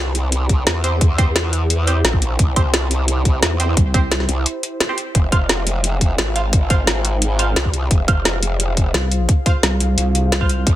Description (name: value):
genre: dark technical drum and bass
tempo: 174 BPM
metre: 4/4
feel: straight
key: F harmonic minor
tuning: A4 = 439 Hz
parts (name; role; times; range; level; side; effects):
- growl bass; bass; 0.0-10.8 s; F1 to E2; -19 LUFS; equal; chorus, tube saturation, sidechain pumping
- warbly tape-like pad; texture; 0.1-10.8 s; E4 to F5; -30 LUFS; equal; chorus, built-in reverb, sidechain pumping
- drum and bass drum kit; drums; 0.1-10.7 s; hi-hat, snare drum; -19 LUFS; equal; soft clipping on snare
- electronic kick drum; drums; 0.5-10.7 s; none; -16 LUFS; equal; none
- band-passed chord stab; stabs; 0.8-10.5 s; C4 to F5; -25 LUFS; right 3 dB; phaser, digital delay
- pulsing pluck wobble bass; bass; 3.8-4.3, 8.9-10.7 s; C2; -18 LUFS; equal; distortion, chorus
room: little or no reverb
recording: dense, heavily limited modern master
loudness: -15 LUFS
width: side -14 dB against mid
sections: 0.0-10.8 A section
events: fade-in on ambient pad 0.0-10.8; break 4.5-5.2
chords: 0.0 C; 5.2 Fm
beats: 0.32 0.67 | 1.01 1.36 1.70 2.05 | 2.39 2.74 3.08 3.43 | 3.77 4.12 4.46 4.80 | 5.15 5.50 5.84 6.18 | 6.53 6.87 7.22 7.56 | 7.91 8.25 8.60 8.94 | 9.29 9.63 9.98 10.32 | 10.67